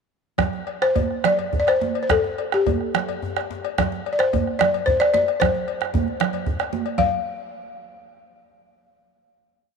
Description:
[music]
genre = west african traditional, West African drum ensemble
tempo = 139-163 BPM (dotted quarters)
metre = 12/8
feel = straight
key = unclear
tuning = A4 = 440 Hz
[part]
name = bombo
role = percussion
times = 0.4-7.1 s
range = none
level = -26 LUFS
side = right 5 dB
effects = none
[part]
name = congas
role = percussion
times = 0.4-7.1 s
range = none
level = -28 LUFS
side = right 14 dB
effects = none
[part]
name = cowbell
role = percussion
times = 0.4-7.1 s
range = none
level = -31 LUFS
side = left 13 dB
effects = none
[part]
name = djembe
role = percussion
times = 0.4-7.1 s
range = none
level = -32 LUFS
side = left 6 dB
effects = none
[part]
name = balafon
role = melody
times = 0.8-7.1 s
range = G4 to F5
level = -22 LUFS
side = left 2 dB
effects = none
[sound]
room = moderate plate reverb, RT60 3.5 s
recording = 1960s-style stereo with parts hard left and right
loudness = -19 LUFS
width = side -5 dB against mid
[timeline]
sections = 0.4-7.0 A section; 7.0-8.5 final note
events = speeding up 0.4-8.5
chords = none

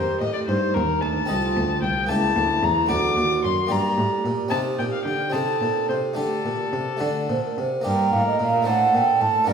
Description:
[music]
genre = classical, baroque-style sonata movement with continuo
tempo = 74 BPM (dotted quarters)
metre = 6/8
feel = straight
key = unclear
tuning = A4 = 440 Hz
[part]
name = dark violin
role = melody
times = 0.0-9.5 s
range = A4 to D6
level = -24 LUFS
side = left 5 dB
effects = none
[part]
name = mellow hollow concert flute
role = second line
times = 0.0-9.5 s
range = Eb4 to A5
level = -24 LUFS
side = right 5 dB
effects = none
[part]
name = harpsichord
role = accompaniment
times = 0.0-9.5 s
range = C2 to E5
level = -28 LUFS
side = left 1 dB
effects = none
[part]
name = rich cello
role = bass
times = 0.0-9.5 s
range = C2 to D3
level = -27 LUFS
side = equal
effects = none
[sound]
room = wet recital hall reverb, RT60 1.4 s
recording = recorded in a church or concert hall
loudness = -20 LUFS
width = side -6 dB against mid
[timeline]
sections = 0.0-7.9 A section; 7.9-9.5 A section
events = none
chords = 0.0 Eb; 1.3 Adim/C; 2.1 C#dim7; 2.9 D; 3.7 Gm; 4.5 Cm; 5.3 Adim; 6.2 Dsus4; 7.0 D; 7.9 Gm; 8.7 D5/A

